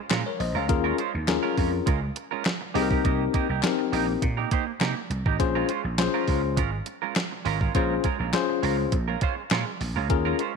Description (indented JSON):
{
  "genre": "early-eighties boogie funk",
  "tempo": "102 BPM",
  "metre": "4/4",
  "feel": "straight",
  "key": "Bb dorian",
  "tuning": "A4 = 439 Hz",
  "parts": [
    { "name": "semi-hollow electric guitar", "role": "riff", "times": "0.1-10.5 s", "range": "Ab3 to C5", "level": "-30 LUFS", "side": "right 14 dB", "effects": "lush chorus" },
    { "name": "vintage slap bass", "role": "bass", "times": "0.1-10.3 s", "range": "Ab1 to C3", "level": "-29 LUFS", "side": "right 1 dB", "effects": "none" },
    { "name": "clean 12-bit digital drum machine", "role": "drums", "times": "0.1-10.5 s", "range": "hi-hat, kick drum, snare drum", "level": "-27 LUFS", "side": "right 2 dB", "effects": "none" },
    { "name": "group handclap", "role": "percussion", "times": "0.1-9.7 s", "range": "none", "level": "-37 LUFS", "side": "left 10 dB", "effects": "none" },
    { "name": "bell-like tine electric piano", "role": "accompaniment", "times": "0.3-10.4 s", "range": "C4 to F5", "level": "-27 LUFS", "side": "left 11 dB", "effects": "medium stereo tremolo" }
  ],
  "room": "light reverb, digital ambience",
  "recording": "1960s-style stereo with parts hard left and right",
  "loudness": "-23 LUFS",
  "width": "side -5 dB against mid",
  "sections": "0.0-10.6 A section",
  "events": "none",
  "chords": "0.0 Bbm7; 0.7 Eb9sus4; 2.8 Cm7; 5.4 Bbm7"
}